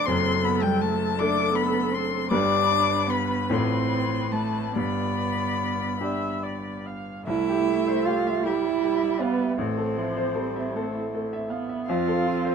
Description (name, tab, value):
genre	classical, slow romantic movement for piano quartet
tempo	47-54 BPM (dotted quarters)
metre	6/8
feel	rubato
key	C major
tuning	A4 = 440 Hz
part	muted violin	melody	0.0-12.5 s	B4 to D6	-29 LUFS	left 9 dB	none
part	muted cello	second line	0.0-12.5 s	G3 to F4	-27 LUFS	right 7 dB	none
part	clear baby grand piano	accompaniment	0.0-12.5 s	F#1 to F5	-27 LUFS	left 2 dB	none
part	muted viola	accompaniment	0.1-12.5 s	F3 to F5	-31 LUFS	right 2 dB	none
room	light reverb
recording	dark, warm production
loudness	-22 LUFS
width	side -6 dB against mid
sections	0.0-7.3 A section; 7.3-12.5 B section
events	none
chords	0.0 D/F#; 2.3 G; 3.5 F/A; 4.7 G; 7.3 C; 9.6 Am; 11.9 F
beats	| 0.04 1.18 | 2.29 3.48 | 4.75 6.01 | 7.26 8.44 | 9.59 10.73 | 11.86